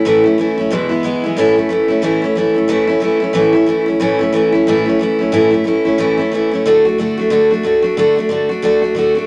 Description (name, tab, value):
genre	rock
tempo	182 BPM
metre	4/4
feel	swing 60% on 8ths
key	A major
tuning	A4 = 440 Hz
part	picked steel-string acoustic guitar	solo	0.0-9.3 s	E2 to F#4	-14 LUFS	equal	none
room	moderate studio reverb, RT60 0.6 s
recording	none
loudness	-14 LUFS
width	mono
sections	0.0-1.4 A section; 1.4-9.3 B section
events	none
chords	0.0 A; 0.7 E; 1.4 A; 6.7 D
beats	| 0.05 0.38 0.71 1.04 | 1.37 1.70 2.03 2.36 | 2.69 3.02 3.35 3.68 | 4.01 4.34 4.67 5.00 | 5.33 5.66 5.99 6.32 | 6.65 6.98 7.31 7.64 | 7.97 8.30 8.63 8.96